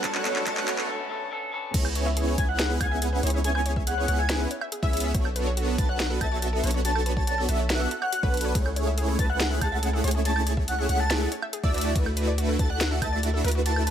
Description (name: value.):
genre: future bass.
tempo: 141 BPM.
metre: 4/4.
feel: half-time.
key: unclear.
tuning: A4 = 440 Hz.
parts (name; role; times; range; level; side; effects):
airy dreamy lead; melody; 0.0-13.8 s; E5 to A5; -31 LUFS; equal; chorus, sidechain pumping, ping-pong delay.
clean electric guitar; accompaniment; 0.0-1.7 s; D3 to A4; -33 LUFS; left 2 dB; sidechain pumping, tape echo.
supersaw chords; riff; 0.0-13.9 s; A3 to F#5; -30 LUFS; right 1 dB; analog chorus, sidechain pumping.
long sustained 808-style bass; bass; 0.0-13.9 s; B1 to D2; -27 LUFS; equal; sidechain pumping.
electronic kick drum; drums; 0.0-13.1 s; none; -27 LUFS; equal; overdrive.
trap drum kit; drums; 0.0-13.9 s; crash cymbal, handclaps, hi-hat, ride cymbal, snare drum, woodblock; -30 LUFS; equal; overdrive.
riser; sound effects; 0.0-0.9 s; none; -38 LUFS; right 1 dB; none.
wide unison pluck; arpeggios; 1.7-13.9 s; A4 to F#5; -38 LUFS; right 1 dB; sidechain pumping, tape echo.
wide unison pluck; arpeggios; 1.7-13.9 s; F#4 to E5; -38 LUFS; left 2 dB; sidechain pumping, tape echo.
room: light reverb, digital ambience.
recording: high-pass filter.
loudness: -23 LUFS.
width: side -9 dB against mid.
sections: 0.0-1.7 A section; 1.7-13.9 B section.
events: build-up 0.0-1.7; drum fill 0.0-0.9; riser 0.0-0.9; break 0.9-1.7; drop 1.7-13.9.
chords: 0.0 Bm9; 1.7 C#m7; 5.1 Bm9; 8.6 Amaj7/C#; 11.7 D69.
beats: | 0.04 0.47 0.89 1.32 | 1.74 2.17 2.59 3.02 | 3.44 3.87 4.29 4.72 | 5.15 5.57 6.00 6.42 | 6.85 7.27 7.70 8.12 | 8.55 8.98 9.40 9.83 | 10.25 10.68 11.10 11.53 | 11.96 12.38 12.81 13.23 | 13.66.